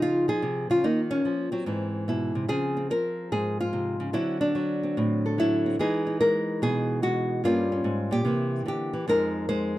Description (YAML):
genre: solo jazz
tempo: 146 BPM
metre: 4/4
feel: swing 66% on 8ths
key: unclear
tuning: A4 = 440 Hz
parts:
  - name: nylon-string guitar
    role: solo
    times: 0.0-9.8 s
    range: F2 to C5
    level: -24 LUFS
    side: equal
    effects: none
room: small room ambience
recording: dry, close 1970s-style studio recording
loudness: -24 LUFS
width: side -15 dB against mid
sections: 0.0-2.5 A section; 2.5-9.8 B section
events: none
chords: 0.0 Dbmaj9; 0.8 Ebm7; 1.7 Abaug; 2.5 Dbmaj7; 4.1 D9; 5.8 Emaj7; 7.4 Gm7b5; 8.2 C7; 9.1 Fm7